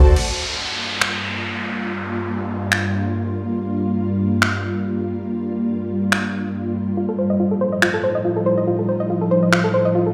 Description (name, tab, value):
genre	future bass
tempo	141 BPM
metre	4/4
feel	swing 54% on 16ths, half-time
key	G minor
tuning	A4 = 440 Hz
part	soft round pluck	arpeggios	0.0-0.2, 7.0-10.1 s	F4 to Eb5	-22 LUFS	equal	chorus, dub echo
part	ethereal airy pad	sustained chords	0.8-10.1 s	G2 to F4	-24 LUFS	equal	ensemble chorus, built-in reverb
part	pop drum kit	drums	0.2-9.6 s	crash cymbal, finger snaps	-23 LUFS	equal	none
part	downlifter	sound effects	0.2-3.6 s	none	-28 LUFS	equal	none
room	wet lush hall reverb, RT60 1.6 s, digital ambience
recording	played on a big sound system in a bare room, large studio reverb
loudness	-21 LUFS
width	mono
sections	0.2-10.1 A section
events	none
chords	0.2 Gm7; 7.0 F7/A